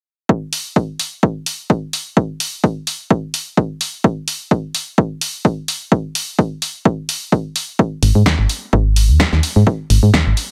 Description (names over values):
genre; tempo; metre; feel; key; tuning
piano house; 128 BPM; 4/4; swing 55% on 16ths; unclear; A4 = 440 Hz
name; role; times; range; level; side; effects
electronic kick drum; drums; 0.3-10.2 s; none; -18 LUFS; equal; high-pass filter on kick
punchy analog drum machine; drums; 0.5-10.5 s; hi-hat, snare drum; -22 LUFS; equal; none
solid FM bass; bass; 8.0-10.3 s; G#1 to G#2; -14 LUFS; equal; sidechain pumping
room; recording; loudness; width
digital ambience; none; -18 LUFS; mono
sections
0.3-10.5 A section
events
none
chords
none